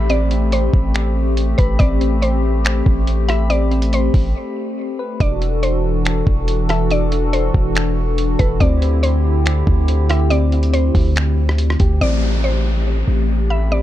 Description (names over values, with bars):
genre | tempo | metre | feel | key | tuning
hip hop, atmospheric cloud-rap | 141 BPM | 4/4 | half-time | A dorian | A4 = 442 Hz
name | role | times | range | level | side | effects
mallet-like synth pluck | melody | 0.0-13.8 s | B4 to E5 | -26 LUFS | equal | chorus, low-pass filter, tape echo
hollow soft pad | sustained chords | 0.0-13.8 s | D3 to A4 | -22 LUFS | left 2 dB | chorus, sidechain pumping
soft electric-piano-like synth keys | arpeggios | 0.0-13.8 s | C4 to B5 | -27 LUFS | left 2 dB | chorus, low-pass filter, tape echo
long sustained 808-style bass | bass | 0.0-13.8 s | E1 to D2 | -17 LUFS | equal | none
downlifter | sound effects | 0.0-1.8, 12.0-13.8 s | none | -30 LUFS | equal | none
lo-fi sampler-style drum kit | drums | 0.1-11.9 s | finger snaps, hi-hat, kick drum, rim click | -18 LUFS | equal | none
room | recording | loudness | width
little or no reverb | dark, warm production | -14 LUFS | side -13 dB against mid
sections
0.0-12.0 A section; 12.0-13.8 B section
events
break 4.4-5.2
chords
0.0 Am9; 5.2 E9sus4; 8.6 D9sus4; 12.0 Am9